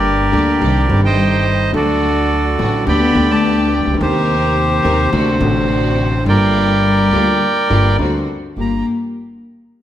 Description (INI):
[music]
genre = tango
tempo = 106 BPM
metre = 4/4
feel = rubato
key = G minor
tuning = A4 = 440 Hz
[part]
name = bandoneon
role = melody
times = 0.0-8.9 s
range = F#4 to B5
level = -17 LUFS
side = right 2 dB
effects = none
[part]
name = warm cello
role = second line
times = 0.0-8.8 s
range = C3 to B3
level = -21 LUFS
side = left 3 dB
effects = none
[part]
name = dark upright piano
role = accompaniment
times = 0.0-8.8 s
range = G1 to G4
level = -18 LUFS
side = left 2 dB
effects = none
[part]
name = rich studio string section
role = stabs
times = 0.0-8.8 s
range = A3 to Bb4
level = -26 LUFS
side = equal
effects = none
[part]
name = upright bass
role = bass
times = 0.0-8.8 s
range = G1 to Eb2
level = -19 LUFS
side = right 1 dB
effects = none
[sound]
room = wet recital hall reverb, RT60 1.4 s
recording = none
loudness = -12 LUFS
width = side -11 dB against mid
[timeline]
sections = 0.0-8.6 A section; 8.6-9.8 B section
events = none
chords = 0.0 Gm; 0.6 Cm; 1.7 D; 2.9 G/D; 4.0 Cm7/Eb; 5.1 D7; 6.3 Gm7; 8.0 D7; 8.6 Gm7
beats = 0.05 0.62 1.18 | 1.75 2.31 2.88 3.44 | 4.00 4.57 5.13 5.70 | 6.27 6.84 7.42 8.00 | 8.57